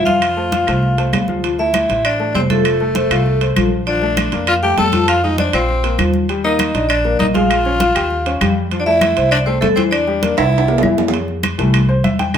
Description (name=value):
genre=Afro-Cuban jazz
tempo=198 BPM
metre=4/4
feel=straight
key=unclear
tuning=A4 = 441 Hz
part: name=vibraphone with medium hard mallets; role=melody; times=0.0-10.9 s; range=A4 to A5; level=-19 LUFS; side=equal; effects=none
part: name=growling tenor saxophone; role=second line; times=0.0-10.9 s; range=A3 to A4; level=-21 LUFS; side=left 3 dB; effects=none
part: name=warm upright piano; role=accompaniment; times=0.0-12.4 s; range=D3 to G5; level=-21 LUFS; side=left 2 dB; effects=none
part: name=upright bass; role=bass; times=0.0-12.4 s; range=F1 to F2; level=-20 LUFS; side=equal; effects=none
part: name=congas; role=percussion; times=0.1-12.4 s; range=none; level=-22 LUFS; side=equal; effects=none
part: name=timbales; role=percussion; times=0.1-12.4 s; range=none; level=-23 LUFS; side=right 6 dB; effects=none
part: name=claves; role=percussion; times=0.2-12.4 s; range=none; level=-27 LUFS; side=left 3 dB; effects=none
room=moderate club reverb, RT60 0.9 s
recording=minimal, uncompressed stereo recording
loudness=-13 LUFS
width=side -8 dB against mid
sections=0.0-1.4 A section; 1.4-11.1 B section; 11.1-12.4 C section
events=drum fill 10.4-11.1; upright piano solo 11.1-12.4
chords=0.0 F; 1.4 Dm9; 2.7 F; 3.9 Bbmaj7; 5.1 Fm; 5.7 Bbsus2; 6.3 Ebmaj7; 7.5 Bbm7; 8.1 Eb9; 8.7 F; 9.9 Em7b5; 10.5 C7; 11.1 Fmaj7